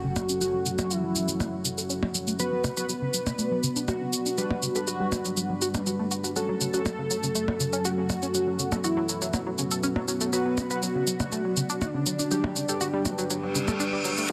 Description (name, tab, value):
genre	melodic techno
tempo	121 BPM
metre	4/4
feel	straight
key	F# phrygian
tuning	A4 = 440 Hz
part	unison lead	melody	0.0-14.3 s	D4 to B4	-34 LUFS	equal	analog chorus, sidechain pumping, digital delay
part	dark analog pad	sustained chords	0.0-14.3 s	F#3 to D5	-36 LUFS	equal	chorus, sidechain pumping
part	tight sequenced synth	arpeggios	0.0-14.3 s	C#3 to A4	-34 LUFS	equal	chorus, cassette tape, sidechain pumping, dub echo
part	impact and reverse cymbal	sound effects	0.0-0.4, 13.4-14.3 s	none	-34 LUFS	equal	none
part	percussion blips and shaker	drums	0.2-14.3 s	none	-32 LUFS	equal	none
part	sync-sweep polysynth	stabs	0.4-14.3 s	F#3 to B4	-36 LUFS	equal	chorus, sidechain pumping, dub echo
room	light reverb, digital ambience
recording	dense, heavily limited modern master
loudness	-27 LUFS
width	mono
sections	0.0-14.3 A section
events	impact 0.0-0.4; filter sweep on synth arpeggio sound 0.0-14.3; reverse cymbal 13.5-14.3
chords	0.0 F#m; 2.4 Bm; 4.4 G; 6.4 F#m; 10.3 Bm; 12.3 G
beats	| 0.41 0.91 1.40 1.90 | 2.40 2.89 3.39 3.88 | 4.38 4.87 5.37 5.87 | 6.36 6.86 7.35 7.85 | 8.35 8.84 9.34 9.83 | 10.33 10.82 11.32 11.82 | 12.31 12.81 13.30 13.80 | 14.30